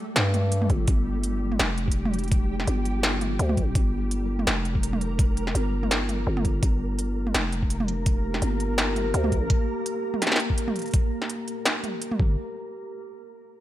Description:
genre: half-time drum and bass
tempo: 167 BPM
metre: 4/4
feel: swing 56% on 16ths, half-time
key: G minor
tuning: A4 = 437 Hz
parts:
  - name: flickering grainy texture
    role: texture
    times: 0.0-12.4 s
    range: G3 to Bb5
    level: -36 LUFS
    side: equal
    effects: built-in reverb
  - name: growling 808-style bass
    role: bass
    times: 0.2-9.5, 12.2-12.4 s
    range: F1 to G2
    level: -26 LUFS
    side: equal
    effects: none
  - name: industrial drum kit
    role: drums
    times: 0.2-12.2 s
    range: hi-hat, snare drum, toms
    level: -26 LUFS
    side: right 1 dB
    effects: overdrive
  - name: electronic kick drum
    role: drums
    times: 0.7-12.3 s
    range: none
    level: -23 LUFS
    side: equal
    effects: overdrive
  - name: dark analog pad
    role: sustained chords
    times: 7.5-12.4 s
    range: Bb3 to Bb4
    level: -32 LUFS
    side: equal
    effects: chorus, phaser, sidechain pumping
room: light reverb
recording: none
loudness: -22 LUFS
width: side -14 dB against mid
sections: 0.0-6.6 A section; 6.6-12.4 B section; 12.4-13.6 C section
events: drop 0.0-6.6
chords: 0.0 Gmadd9; 6.6 Gm; 12.2 Gmadd9; 12.4 N.C.

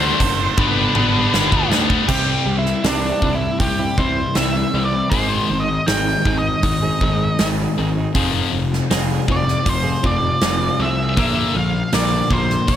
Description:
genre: quiet-loud alternative rock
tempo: 79 BPM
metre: 4/4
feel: straight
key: unclear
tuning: A4 = 444 Hz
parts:
  - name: octave-fuzz lead guitar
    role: melody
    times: 0.0-12.8 s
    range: D4 to G5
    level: -22 LUFS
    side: right 1 dB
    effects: distortion, slapback echo
  - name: heavy high-gain guitar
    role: riff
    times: 0.0-2.1 s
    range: G2 to D4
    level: -24 LUFS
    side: right 15 dB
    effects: distortion
  - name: high-gain distorted guitar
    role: riff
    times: 0.0-12.8 s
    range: F2 to D4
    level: -22 LUFS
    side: left 8 dB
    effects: distortion
  - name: fuzz picked electric bass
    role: bass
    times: 0.0-12.8 s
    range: F1 to D2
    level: -23 LUFS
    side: equal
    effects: overdrive
  - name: big rock drum kit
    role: drums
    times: 0.2-12.8 s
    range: crash cymbal, hi-hat, kick drum, snare drum, toms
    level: -22 LUFS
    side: right 1 dB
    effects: none
  - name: clean electric guitar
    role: arpeggios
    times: 2.1-12.7 s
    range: Ab2 to Bb4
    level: -25 LUFS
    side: right 5 dB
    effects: harmonic tremolo
room: light reverb, studio reverb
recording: none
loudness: -16 LUFS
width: side -10 dB against mid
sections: 0.0-2.1 A section; 2.1-12.8 B section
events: drum fill 0.6-2.1; lead electric guitar solo 2.1-12.8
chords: 0.0 D; 0.6 G; 2.1 C; 5.1 Ab; 8.2 Fm; 11.2 Bb

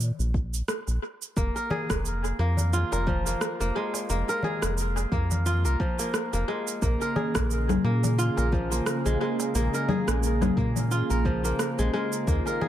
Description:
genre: organic downtempo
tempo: 88 BPM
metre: 4/4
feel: swing 56% on 16ths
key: Bb minor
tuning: A4 = 440 Hz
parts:
  - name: round analog bass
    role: bass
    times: 0.0-12.4 s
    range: F1 to Bb2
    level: -26 LUFS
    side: equal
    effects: none
  - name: electronic shaker, rim click and congas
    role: drums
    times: 0.0-12.6 s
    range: none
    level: -31 LUFS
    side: equal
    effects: analog delay
  - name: electronic kick drum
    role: drums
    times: 0.3-12.4 s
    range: none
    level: -29 LUFS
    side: equal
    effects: none
  - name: darbuka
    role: percussion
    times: 0.9-12.7 s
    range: none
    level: -36 LUFS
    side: left 2 dB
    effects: none
  - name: kora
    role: arpeggios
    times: 1.4-12.7 s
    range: F3 to Bb4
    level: -29 LUFS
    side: equal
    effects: dub echo
  - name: warm analog pad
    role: sustained chords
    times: 6.8-12.7 s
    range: Db3 to Ab4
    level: -30 LUFS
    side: right 2 dB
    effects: chorus, sidechain pumping
room: moderate spring reverb, RT60 1.9 s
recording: echo-heavy mix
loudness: -24 LUFS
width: side -11 dB against mid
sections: 0.0-12.7 A section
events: none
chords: 0.0 N.C.; 1.4 Fm; 6.8 Bbm7

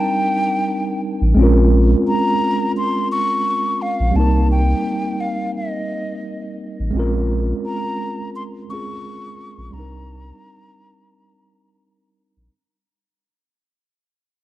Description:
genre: lo-fi hip hop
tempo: 86 BPM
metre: 4/4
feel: swing 58% on 16ths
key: Bb dorian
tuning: A4 = 441 Hz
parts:
  - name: breathy mellow silver concert flute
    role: melody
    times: 0.0-11.8 s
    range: Eb5 to Db6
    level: -23 LUFS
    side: left 1 dB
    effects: tape echo
  - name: mellow tine electric piano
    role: accompaniment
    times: 0.0-12.5 s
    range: G3 to Bb4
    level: -21 LUFS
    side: right 1 dB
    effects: medium stereo tremolo
  - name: warm sub bass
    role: bass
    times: 1.2-12.5 s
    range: A1 to C2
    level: -16 LUFS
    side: equal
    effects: none
room: light reverb, small room ambience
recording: echo-heavy mix, cassette tape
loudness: -16 LUFS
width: side -15 dB against mid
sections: 0.0-1.4 A section; 1.4-12.5 B section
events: fade-out 1.4-12.5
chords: 0.0 Cm7; 1.4 Bbm7; 4.1 Cm7; 6.9 Bbm7; 9.7 Cm7

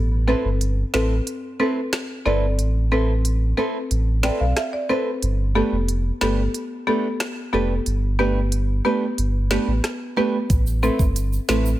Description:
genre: dancehall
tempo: 91 BPM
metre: 4/4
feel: straight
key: A minor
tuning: A4 = 440 Hz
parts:
  - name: sub bass with octave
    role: bass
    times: 0.0-11.8 s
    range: F1 to B1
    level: -21 LUFS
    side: equal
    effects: none
  - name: buzzing marimba with medium mallets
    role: accompaniment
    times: 0.3-11.6 s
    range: B3 to G5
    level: -24 LUFS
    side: left 2 dB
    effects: sidechain pumping
  - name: nylon-string guitar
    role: arpeggios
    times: 0.3-11.7 s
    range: A3 to B4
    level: -26 LUFS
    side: right 6 dB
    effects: none
  - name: island pop drum kit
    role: drums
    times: 0.6-11.6 s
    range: hi-hat, kick drum, rim click, snare drum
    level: -24 LUFS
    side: equal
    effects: none
  - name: egg shaker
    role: percussion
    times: 10.5-11.8 s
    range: none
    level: -38 LUFS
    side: right 8 dB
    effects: none
room: studio reverb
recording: none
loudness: -19 LUFS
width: side -14 dB against mid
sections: 0.0-11.8 A section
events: break 0.0-10.5; marimba fill 3.9-5.2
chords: 0.0 Amadd9; 5.2 Gadd9; 10.5 Amadd9

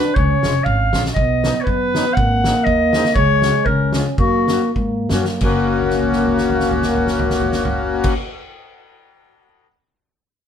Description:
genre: alpine folk, alpine dance band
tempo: 85-121 BPM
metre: 2/4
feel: swing 54% on 8ths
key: F# major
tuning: A4 = 443 Hz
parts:
  - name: clear clarinet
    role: melody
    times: 0.0-4.7 s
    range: F#4 to F#5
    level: -18 LUFS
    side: left 1 dB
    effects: none
  - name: warm euphonium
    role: second line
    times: 0.0-8.1 s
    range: G#3 to D4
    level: -22 LUFS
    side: right 2 dB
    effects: none
  - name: accordion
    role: accompaniment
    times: 0.0-8.1 s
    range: F#3 to F#4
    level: -21 LUFS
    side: left 5 dB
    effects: none
  - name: upright bass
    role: bass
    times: 0.2-8.1 s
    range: E#1 to G#2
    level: -22 LUFS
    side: left 1 dB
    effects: none
  - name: loose indie drum kit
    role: drums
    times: 0.2-9.7 s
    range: crash cymbal, kick drum, snare drum, toms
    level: -22 LUFS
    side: right 1 dB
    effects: none
room: moderate studio reverb, RT60 0.8 s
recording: band playing live in one room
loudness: -15 LUFS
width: side -8 dB against mid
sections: 0.0-5.4 A section; 5.4-8.2 B section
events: slowing down 3.2-5.4; drum fill 5.8-8.0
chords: 0.2 C#; 1.2 B; 2.2 G#7; 3.2 C#sus4; 3.7 C#; 4.2 F#

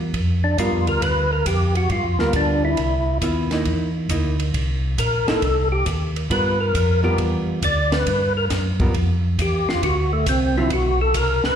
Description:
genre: soul jazz organ trio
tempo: 136 BPM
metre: 4/4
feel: swing 67% on 8ths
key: unclear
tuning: A4 = 440 Hz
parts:
  - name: mellow tonewheel organ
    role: bass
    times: 0.0-11.5 s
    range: Bb1 to G2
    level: -21 LUFS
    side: equal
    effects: chorus vibrato, slow rotary speaker
  - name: compact cocktail drum kit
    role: drums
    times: 0.1-11.5 s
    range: hi-hat, kick drum, ride cymbal, snare drum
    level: -27 LUFS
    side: equal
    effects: none
  - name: percussive tonewheel organ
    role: melody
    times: 0.4-11.6 s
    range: A3 to D5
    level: -21 LUFS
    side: left 1 dB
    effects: slow rotary speaker, chorus vibrato, slapback echo
  - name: archtop guitar, miked and amplified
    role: accompaniment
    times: 0.6-10.7 s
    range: D3 to A#4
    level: -26 LUFS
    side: right 1 dB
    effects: slapback echo
room: light reverb, small room ambience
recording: live gig heard through the venue's PA, recital hall reverb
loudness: -18 LUFS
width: side -8 dB against mid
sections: 0.0-11.6 A section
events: tonewheel organ solo 0.0-11.6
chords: 0.0 G7#9; 2.8 C7#9; 6.3 G7#9; 9.8 D7

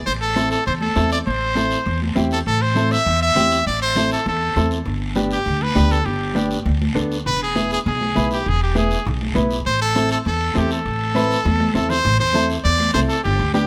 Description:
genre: latin, cumbia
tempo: 200 BPM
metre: 4/4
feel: straight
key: A minor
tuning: A4 = 441 Hz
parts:
  - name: brilliant trumpet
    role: melody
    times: 0.1-13.7 s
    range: G4 to E5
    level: -23 LUFS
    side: equal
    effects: none
  - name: upright bass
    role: bass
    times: 0.1-13.7 s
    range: E1 to E2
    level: -24 LUFS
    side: equal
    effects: none
  - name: guiro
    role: percussion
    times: 0.1-13.7 s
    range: none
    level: -35 LUFS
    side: equal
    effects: none
  - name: mellow electric guitar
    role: accompaniment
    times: 0.4-13.7 s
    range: B3 to B4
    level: -26 LUFS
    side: equal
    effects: none
  - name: congas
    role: percussion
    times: 0.4-13.7 s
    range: none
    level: -29 LUFS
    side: equal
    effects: none
room: light reverb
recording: none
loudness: -19 LUFS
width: mono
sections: 0.0-12.1 A section; 12.1-13.7 B section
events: drum fill 11.5-12.1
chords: 0.1 Am; 4.9 G; 7.3 E; 9.7 Am

